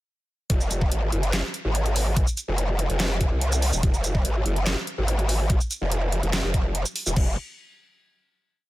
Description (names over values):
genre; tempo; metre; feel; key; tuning
heavy wobble dubstep; 144 BPM; 4/4; half-time; F phrygian; A4 = 441 Hz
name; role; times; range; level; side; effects
growl bass; bass; 0.5-7.4 s; Eb1 to C2; -24 LUFS; equal; distortion, chorus, overdrive
dubstep drum kit; drums; 0.5-7.3 s; crash cymbal, handclaps, hi-hat, shaker, snare drum; -29 LUFS; right 1 dB; overdrive
electronic kick drum; drums; 0.5-7.3 s; none; -23 LUFS; equal; none
room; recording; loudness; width
little or no reverb; none; -22 LUFS; side -17 dB against mid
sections
0.5-7.2 drop; 7.2-8.7 final chord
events
drop 0.5-7.2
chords
none